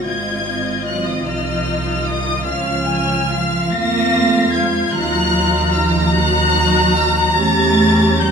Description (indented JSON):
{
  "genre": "classical, slow romantic movement for string orchestra",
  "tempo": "49 BPM (dotted quarters)",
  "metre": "6/8",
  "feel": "rubato",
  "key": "unclear",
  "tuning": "A4 = 435 Hz",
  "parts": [
    { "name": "dark studio violin section", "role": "melody", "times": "0.0-8.3 s", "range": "Eb6 to Bb6", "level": "-21 LUFS", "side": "left 2 dB", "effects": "none" },
    { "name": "warm studio violin section", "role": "second line", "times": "0.0-8.3 s", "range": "Eb5 to Bb5", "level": "-20 LUFS", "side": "left 1 dB", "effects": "none" },
    { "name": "rich studio viola section", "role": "accompaniment", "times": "0.0-8.3 s", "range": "C4 to G4", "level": "-22 LUFS", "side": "equal", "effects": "none" },
    { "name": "rich studio double bass section", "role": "bass", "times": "0.0-8.3 s", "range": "Ab1 to F2", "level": "-21 LUFS", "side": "right 2 dB", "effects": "none" },
    { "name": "warm studio cello section", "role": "bass", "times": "0.0-8.3 s", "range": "Eb3 to Bb3", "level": "-21 LUFS", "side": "right 1 dB", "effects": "none" }
  ],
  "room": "wet recital hall reverb, RT60 1.6 s",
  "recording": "recorded in a church or concert hall",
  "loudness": "-14 LUFS",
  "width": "side -6 dB against mid",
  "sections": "0.0-8.3 A section",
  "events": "none",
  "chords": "0.0 Ab; 2.5 Db; 4.9 Ebmadd9; 7.4 Edim7",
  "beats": "| 0.05 1.27 | 2.46 3.73 | 4.93 6.14 | 7.37"
}